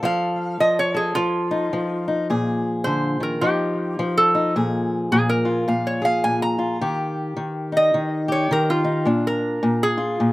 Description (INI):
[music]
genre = acoustic country blues, solo or duo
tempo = 106 BPM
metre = 4/4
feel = swing 60% on 8ths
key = Bb mixolydian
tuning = A4 = 440 Hz
[part]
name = fingerpicked old ladder-braced acoustic guitar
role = accompaniment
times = 0.0-10.3 s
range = Bb2 to A4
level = -21 LUFS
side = left 1 dB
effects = none
[part]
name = lap resonator guitar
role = melody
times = 0.1-10.3 s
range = F4 to Bb5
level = -22 LUFS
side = right 1 dB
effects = none
[sound]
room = little or no reverb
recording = recorded outdoors, with no room sound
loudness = -19 LUFS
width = side -18 dB against mid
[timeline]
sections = 0.0-4.5 A section; 4.5-10.3 A section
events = resonator guitar played with a steel bar solo 0.0-10.3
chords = 0.0 F7; 2.3 Bb7; 3.4 F9; 4.5 Bb5; 6.8 Eb; 9.1 Bb7